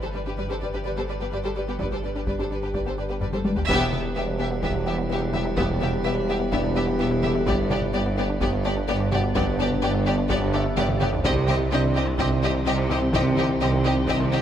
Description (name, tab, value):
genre	cinematic, hybrid orchestral and electronic film score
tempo	127 BPM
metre	4/4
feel	straight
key	E minor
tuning	A4 = 442 Hz
part	warm symphonic violin section	second line	0.0-14.4 s	G4 to D5	-31 LUFS	left 1 dB	none
part	warm studio viola section	accompaniment	0.0-14.4 s	G3 to G4	-33 LUFS	equal	none
part	metallic inharmonic drone	sustained chords	0.0-14.4 s	Eb3 to C5	-32 LUFS	right 1 dB	chorus, built-in reverb
part	woody wave-folded pluck	arpeggios	0.0-14.4 s	C3 to G4	-35 LUFS	left 2 dB	none
part	dark symphonic cello section	bass	0.0-14.4 s	E2 to C3	-31 LUFS	right 2 dB	none
part	saturated sub bass	bass	0.0-14.4 s	E1 to C2	-32 LUFS	equal	none
part	warm symphonic double bass section	bass	0.1-14.4 s	E1 to C2	-31 LUFS	right 4 dB	none
part	taiko ensemble	drums	0.6-14.4 s	none	-29 LUFS	equal	none
part	felt-muted upright piano	texture	0.6-14.4 s	D4 to F#5	-36 LUFS	left 2 dB	none
part	dark symphonic violin section	melody	3.7-14.4 s	D5 to E5	-31 LUFS	left 3 dB	none
part	dark French horn section	sustained chords	3.7-14.4 s	Eb3 to G4	-30 LUFS	left 3 dB	none
part	clear tuba	bass	3.7-14.4 s	E1 to C2	-30 LUFS	right 4 dB	none
room	moderate scoring stage reverb, RT60 1.5 s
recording	none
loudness	-21 LUFS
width	side -10 dB against mid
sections	0.0-3.7 A section; 3.7-14.4 B section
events	drum fill 3.2-3.7, 10.8-11.2; band accent 3.7-4.2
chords	0.0 G; 3.7 Em; 7.5 G; 11.2 Cm